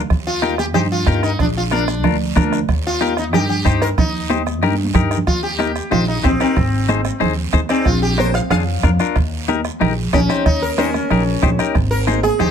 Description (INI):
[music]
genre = latin, cumbia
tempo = 185 BPM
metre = 4/4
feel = straight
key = Eb major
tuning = A4 = 443 Hz
[part]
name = upright bass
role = bass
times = 0.0-12.5 s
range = Ab1 to G2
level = -20 LUFS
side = equal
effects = none
[part]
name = bombo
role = percussion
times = 0.1-12.5 s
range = none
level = -21 LUFS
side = right 2 dB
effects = none
[part]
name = guiro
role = percussion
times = 0.1-12.5 s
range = none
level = -33 LUFS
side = right 8 dB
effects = none
[part]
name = sitar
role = melody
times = 0.3-12.5 s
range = C4 to F5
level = -21 LUFS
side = left 1 dB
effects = plate reverb
[part]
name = clean electric guitar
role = accompaniment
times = 0.4-12.5 s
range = D4 to D5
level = -21 LUFS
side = left 8 dB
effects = none
[part]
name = congas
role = percussion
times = 0.4-12.5 s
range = none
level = -23 LUFS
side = right 4 dB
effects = none
[sound]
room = light reverb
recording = none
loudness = -15 LUFS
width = side -8 dB against mid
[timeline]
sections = 0.0-5.3 A section; 5.3-12.5 B section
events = drum fill 4.6-5.3; sitar solo 5.3-12.5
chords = 0.1 Eb; 1.4 Bb; 2.7 Eb; 6.6 Ab; 7.9 Bb; 9.2 Eb; 11.8 Ab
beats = | 0.10 0.43 0.75 1.07 | 1.40 1.72 2.04 2.37 | 2.69 3.01 3.33 3.66 | 3.98 4.30 4.63 4.95 | 5.27 5.60 5.92 6.24 | 6.57 6.89 7.22 7.54 | 7.86 8.19 8.51 8.84 | 9.16 9.48 9.81 10.13 | 10.46 10.78 11.11 11.43 | 11.75 12.08 12.40